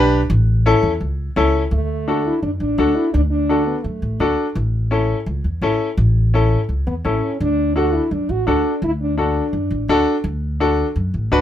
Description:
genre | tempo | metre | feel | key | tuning
latin, cumbia | 169 BPM | 4/4 | straight | D major | A4 = 440 Hz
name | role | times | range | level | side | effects
clear upright piano | accompaniment | 0.0-11.4 s | C#4 to B4 | -18 LUFS | left 2 dB | none
upright bass | bass | 0.0-11.4 s | A1 to F#2 | -19 LUFS | equal | none
mellow French horn | melody | 1.7-4.4, 6.9-10.0 s | A3 to F#4 | -21 LUFS | equal | none
room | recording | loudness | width
light reverb | minimal, uncompressed stereo recording | -16 LUFS | side -11 dB against mid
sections
0.0-1.7 A section; 1.7-11.4 B section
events
none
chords
0.3 A; 1.7 D; 4.6 A; 7.4 D

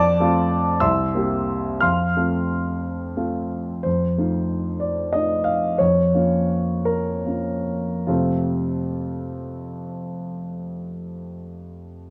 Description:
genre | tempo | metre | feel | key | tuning
classical, romantic character piece for solo piano | 47-67 BPM (dotted quarters) | 6/8 | rubato | F major | A4 = 439 Hz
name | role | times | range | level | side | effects
warm grand piano | solo | 0.0-12.1 s | C2 to F6 | -23 LUFS | equal | none
room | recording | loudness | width
moderate recital hall reverb, RT60 1.4 s | close, detailed microphones | -22 LUFS | mono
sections
0.0-3.9 A section; 3.9-8.1 B section; 8.1-12.1 C section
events
slowing down 2.8-8.1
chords
0.0 F; 0.8 C7; 1.8 F; 3.9 F7; 5.8 Bbm/F; 8.1 F

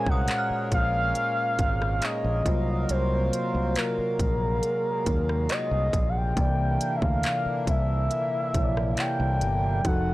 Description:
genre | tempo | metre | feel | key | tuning
contemporary R&B | 69 BPM | 4/4 | straight | unclear | A4 = 440 Hz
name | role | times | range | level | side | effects
gliding portamento lead | melody | 0.0-10.1 s | Bb4 to G5 | -28 LUFS | equal | chorus
mellow tine electric piano | accompaniment | 0.0-10.1 s | Bb2 to Eb5 | -31 LUFS | left 1 dB | none
pedal harmonium | sustained chords | 0.0-10.1 s | Bb2 to Gb4 | -34 LUFS | equal | none
synth chime | texture | 0.0-6.8 s | Eb5 to F6 | -40 LUFS | right 1 dB | ensemble chorus, analog delay
fingered electric bass | bass | 0.1-10.1 s | F1 to Eb2 | -27 LUFS | equal | none
trap drum kit | drums | 0.1-10.1 s | handclaps, hi-hat, kick drum, rim click | -28 LUFS | equal | none
room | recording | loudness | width
little or no reverb | dry, gritty hardware recording, transformer saturation, cassette tape | -23 LUFS | side -17 dB against mid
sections
0.0-10.1 A section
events
none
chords
0.0 Bbm9; 2.5 Ab13; 6.4 C9

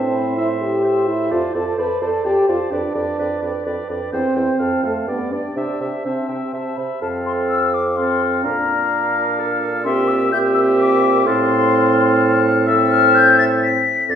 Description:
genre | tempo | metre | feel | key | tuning
quick classical-period movement for wind quintet | 128 BPM | 3/4 | straight | C major, F major from 7.0 s | A4 = 441 Hz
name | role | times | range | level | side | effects
mellow hollow silver concert flute | melody | 0.0-14.2 s | G5 to B6 | -20 LUFS | left 6 dB | none
warm oboe | second line | 0.0-14.2 s | D5 to G5 | -25 LUFS | left 4 dB | none
clear French horn | accompaniment | 0.0-14.2 s | A3 to B4 | -20 LUFS | right 1 dB | none
warm clarinet | accompaniment | 0.0-14.2 s | G4 to D5 | -24 LUFS | right 4 dB | none
mellow bassoon | bass | 0.0-14.2 s | E2 to C3 | -22 LUFS | right 3 dB | none
room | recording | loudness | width
wet recital hall reverb, RT60 1.6 s | heard from further back in the room | -15 LUFS | side -8 dB against mid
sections
0.0-7.0 A section; 7.0-14.2 B section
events
none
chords
0.0 Am; 1.3 Dm7/F; 2.7 G7/F; 4.1 C/E; 4.6 F; 5.1 G; 5.6 C; 7.0 F; 8.4 Bb; 9.9 C7/Bb; 11.3 F/A

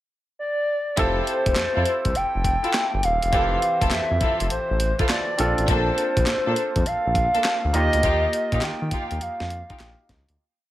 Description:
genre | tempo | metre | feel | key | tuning
R&B, new jack swing | 102 BPM | 4/4 | swing 66% on 16ths | F major | A4 = 441 Hz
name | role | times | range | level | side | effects
hollow clarinet-like synth lead | melody | 0.4-10.1 s | C5 to G5 | -24 LUFS | equal | chorus
clear concert grand piano | accompaniment | 1.0-10.4 s | E3 to C5 | -29 LUFS | right 1 dB | none
dark studio string section | stabs | 1.0-9.8 s | Bb3 to A4 | -29 LUFS | left 2 dB | none
smooth synth bass | bass | 1.0-10.4 s | Eb1 to Eb3 | -26 LUFS | equal | none
breakbeat sampler-style drum kit | drums | 1.0-10.4 s | handclaps, hi-hat, kick drum, snare drum | -26 LUFS | equal | none
room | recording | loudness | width
little or no reverb | none | -20 LUFS | side -14 dB against mid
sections
0.0-1.0 pickup bar; 1.0-10.4 verse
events
fade-out 8.0-10.4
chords
0.0 N.C.; 1.0 Fmaj7; 5.4 Bbmaj7; 7.7 Ebadd9

